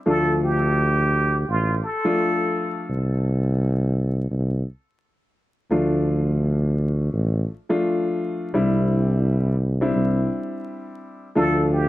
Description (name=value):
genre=hip hop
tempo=85 BPM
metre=4/4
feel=swing 62% on 16ths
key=D minor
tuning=A4 = 440 Hz
part: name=trumpet with plunger mute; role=melody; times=0.1-2.9, 11.4-11.9 s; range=F4 to A4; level=-24 LUFS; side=right 1 dB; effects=high-pass filter, low-pass filter, tape echo
part: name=dark concert grand piano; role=accompaniment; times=0.1-11.9 s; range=F3 to F4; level=-23 LUFS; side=left 1 dB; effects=cassette tape, high-pass filter, low-pass filter
part: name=breathy tuba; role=bass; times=0.1-11.9 s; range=A1 to D2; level=-21 LUFS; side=equal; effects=none
room=light reverb, small room ambience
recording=vinyl crackle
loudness=-20 LUFS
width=side -16 dB against mid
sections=0.1-11.4 A section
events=break 2.9-5.7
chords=0.1 Dm; 2.9 N.C.; 5.7 Dm; 8.5 Cadd9; 11.4 Dm